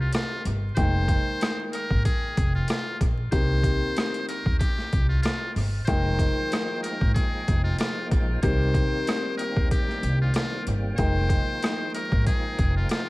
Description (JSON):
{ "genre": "hip hop, boom-bap hip-hop", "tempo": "94 BPM", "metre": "4/4", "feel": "swing 56% on 16ths", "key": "F minor", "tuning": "A4 = 444 Hz", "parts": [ { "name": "trumpet with metal mute", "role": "melody", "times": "0.0-13.1 s", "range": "F4 to C5", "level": "-31 LUFS", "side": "equal", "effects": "high-pass filter, low-pass filter, analog delay" }, { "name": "dark upright piano", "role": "accompaniment", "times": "0.0-13.1 s", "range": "Eb3 to G5", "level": "-31 LUFS", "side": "left 2 dB", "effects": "cassette tape, high-pass filter, low-pass filter, analog delay" }, { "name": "upright bass", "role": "bass", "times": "0.0-12.8 s", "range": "F1 to Eb2", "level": "-26 LUFS", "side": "equal", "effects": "none" }, { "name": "boom bap sampler-style drum kit", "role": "drums", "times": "0.1-13.1 s", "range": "hi-hat, kick drum, rim click, snare drum", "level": "-26 LUFS", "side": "equal", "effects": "overdrive" }, { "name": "percussive tonewheel organ", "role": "sustained chords", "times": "5.9-13.1 s", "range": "Eb3 to G5", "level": "-35 LUFS", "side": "equal", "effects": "overdrive, chorus vibrato, slow rotary speaker, high-pass filter, low-pass filter" } ], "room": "small room ambience", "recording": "echo-heavy mix, vinyl crackle", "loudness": "-22 LUFS", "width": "side -21 dB against mid", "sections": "0.0-13.1 A section", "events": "none", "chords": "0.0 Cm7; 0.8 Fm11; 3.3 Cm7; 5.9 Fm11; 8.4 Cm7; 11.0 Fm11" }